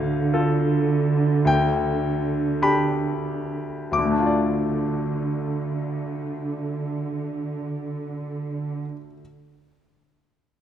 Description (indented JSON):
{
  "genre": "cinematic, emotional film score for orchestra",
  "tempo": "44-55 BPM (dotted quarters)",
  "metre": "6/8",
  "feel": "rubato",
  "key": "D dorian",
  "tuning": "A4 = 440 Hz",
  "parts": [
    { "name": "bright grand piano", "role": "accompaniment", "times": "0.0-9.2 s", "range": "D2 to D6", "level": "-24 LUFS", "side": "left 3 dB", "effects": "none" },
    { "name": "muted symphonic cello section", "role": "bass", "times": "0.0-8.8 s", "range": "D3", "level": "-25 LUFS", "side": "right 4 dB", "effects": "none" }
  ],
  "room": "moderate scoring stage reverb, RT60 1.9 s",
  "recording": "dark, warm production",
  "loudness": "-22 LUFS",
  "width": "side -10 dB against mid",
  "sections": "0.0-3.9 A section; 3.9-9.2 B section",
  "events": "slowing down 0.0-3.9",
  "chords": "0.0 Dm; 1.4 G/D; 3.9 Dm",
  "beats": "0.34 | 1.45 2.62 | 3.92 5.23 | 6.55 7.87"
}